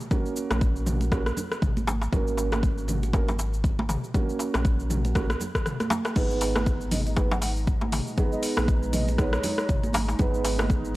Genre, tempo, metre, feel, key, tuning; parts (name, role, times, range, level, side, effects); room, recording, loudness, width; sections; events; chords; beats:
afro house; 119 BPM; 4/4; swing 58% on 16ths; A4 = 443 Hz
deep house drum kit; drums; 0.0-10.9 s; cabasa, crash cymbal, hi-hat, rim click, toms; -31 LUFS; left 1 dB; overdrive
felt-muted upright piano; stabs; 0.1-11.0 s; A#3 to B4; -31 LUFS; right 3 dB; sidechain pumping, analog delay
electronic kick drum; drums; 0.1-10.8 s; -25 LUFS; equal; overdrive
congas; percussion; 0.1-10.8 s; -33 LUFS; right 2 dB
warm sub bass; bass; 0.5-11.0 s; G#1 to A#1; -28 LUFS; equal; sidechain pumping
darbuka; percussion; 0.5-10.7 s; -32 LUFS; left 1 dB
warm analog pad; sustained chords; 6.2-11.0 s; G#3 to A#5; -36 LUFS; right 1 dB; lush chorus, sidechain pumping
breathy mellow bass bansuri; melody; 6.9-9.9 s; C#5 to F#5; -36 LUFS; equal; tape echo
little or no reverb; dry, gritty hardware recording, cassette tape; -23 LUFS; side -18 dB against mid
0.0-11.0 A section
kick drops out 5.7-6.2; drum fill 5.7-6.2
0.0 F#/G#; 6.2 G#m
| 0.11 0.61 1.12 1.62 | 2.13 2.63 3.14 3.64 | 4.14 4.65 5.15 5.66 | 6.16 6.67 7.17 7.67 | 8.18 8.68 9.19 9.69 | 10.19 10.70